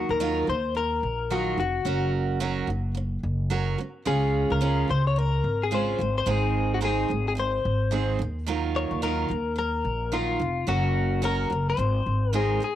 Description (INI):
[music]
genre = pop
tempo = 109 BPM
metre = 4/4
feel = swing 60% on 16ths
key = unclear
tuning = A4 = 440 Hz
[part]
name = direct-recorded clean electric guitar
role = melody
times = 0.0-12.8 s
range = F4 to Db5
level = -27 LUFS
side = left 6 dB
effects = lush chorus, cassette tape
[part]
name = picked steel-string acoustic guitar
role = accompaniment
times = 0.0-12.8 s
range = Ab2 to Bb4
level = -29 LUFS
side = right 8 dB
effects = cassette tape
[part]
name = upright bass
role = bass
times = 0.0-12.6 s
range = F1 to Eb2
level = -27 LUFS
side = equal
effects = none
[sound]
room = light reverb, small room ambience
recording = home recording on cassette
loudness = -23 LUFS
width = side -12 dB against mid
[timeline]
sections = 0.0-12.8 A section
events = none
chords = 0.0 Ebmadd9; 1.9 Gb; 4.1 Db; 6.0 Ab; 8.2 Ebmadd9; 10.7 Gb; 11.8 Abadd9